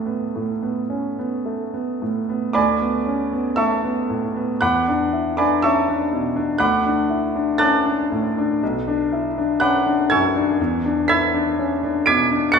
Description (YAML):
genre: classical, impressionist solo piano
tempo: 53-65 BPM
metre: 4/4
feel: rubato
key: D lydian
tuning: A4 = 445 Hz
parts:
  - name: clear concert grand piano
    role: solo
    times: 0.0-12.6 s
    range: B1 to D7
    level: -18 LUFS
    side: equal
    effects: none
room: wet recital hall reverb, RT60 1.7 s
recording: heard from further back in the room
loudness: -18 LUFS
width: side -6 dB against mid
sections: 0.0-2.6 A section; 2.6-12.6 A section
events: none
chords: 0.0 D5; 2.6 Dsus2; 4.6 E9; 6.6 Dadd9; 8.6 Bm9; 10.6 E13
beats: 0.34 1.45 | 2.55 3.58 4.61 5.63 | 6.61 7.59 8.61 9.60 | 10.59 11.56 12.52